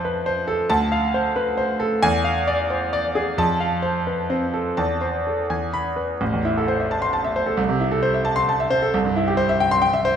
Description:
classical, virtuoso piano study; 88 BPM (dotted quarters); 6/8; rubato; A minor; A4 = 440 Hz
clear concert grand piano; solo; 0.0-10.2 s; A1 to C6; -19 LUFS; equal
wet recital hall reverb, RT60 1.7 s; minimal, uncompressed stereo recording; -19 LUFS; side -8 dB against mid
0.0-6.2 A section; 6.2-10.2 B section
0.0 Fmaj7; 0.7 Dm7; 2.0 E7b9; 3.4 F; 4.8 Am/E; 5.5 E; 6.2 Am; 7.6 Am/C; 8.9 C
0.03 | 0.70 1.36 | 2.03 2.71 | 3.39 4.08 | 4.79 5.50 | 6.21 6.90 | 7.58 8.26 | 8.93 9.61

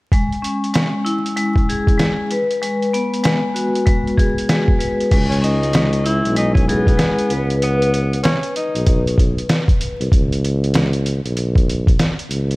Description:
hip hop, boom-bap hip-hop; 96 BPM; 4/4; swing 62% on 16ths; C# minor; A4 = 437 Hz
vibraphone with hard mallets; accompaniment; 0.1-10.1 s; G#3 to B4; -20 LUFS; left 2 dB; cassette tape, high-pass filter, low-pass filter
trip hop sampler-style drum kit; drums; 0.1-12.6 s; crash cymbal, hi-hat, kick drum, snare drum; -17 LUFS; equal; vintage 12-bit sampler grit
breathy tuba; bass; 5.1-12.6 s; B1 to C#2; -19 LUFS; equal
warm tenor saxophone; melody; 5.3-9.0 s; B3 to E4; -22 LUFS; equal; high-pass filter, low-pass filter
light reverb, studio reverb; vinyl crackle; -15 LUFS; side -22 dB against mid
0.1-5.1 A section; 5.1-12.6 B section
0.1 C#m; 2.3 G#m7; 5.1 C#m; 7.3 Bsus2
| 0.12 0.74 1.37 1.99 | 2.62 3.24 3.87 4.49 | 5.12 5.74 6.37 6.99 | 7.62 8.24 8.87 9.49 | 10.12 10.74 11.37 11.99

